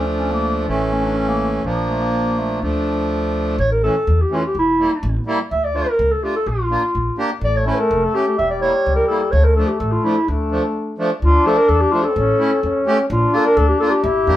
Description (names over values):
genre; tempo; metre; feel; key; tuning
klezmer; 126 BPM; 2/4; straight; D harmonic minor; A4 = 436 Hz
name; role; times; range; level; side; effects
dark clarinet; melody; 0.0-14.4 s; F3 to E5; -19 LUFS; equal; none
accordion; accompaniment; 0.0-14.4 s; E3 to G4; -21 LUFS; right 1 dB; none
upright bass; bass; 0.0-14.4 s; E1 to F2; -21 LUFS; equal; none
warm trombone; second line; 7.4-14.4 s; G3 to E4; -21 LUFS; left 2 dB; none
room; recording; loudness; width
moderate studio reverb, RT60 0.6 s; band playing live in one room; -15 LUFS; side -13 dB against mid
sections
0.0-3.6 A section; 3.6-11.2 B section; 11.2-14.4 A section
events
speeding up 0.0-14.4; break 10.8-11.2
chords
0.0 Dm; 0.7 A; 1.7 Bb; 2.6 Dm; 3.6 A; 4.6 Edim; 5.5 Dm; 6.5 Bb; 7.4 A; 8.4 Edim; 9.3 Dm; 12.2 A; 13.1 Bb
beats
0.20 | 0.68 1.17 | 1.65 2.14 | 2.62 3.11 | 3.59 4.07 | 4.55 5.03 | 5.51 5.99 | 6.47 6.95 | 7.42 7.90 | 8.38 8.85 | 9.33 9.80 | 10.28 10.75 | 11.22 11.69 | 12.16 12.63 | 13.10 13.57 | 14.04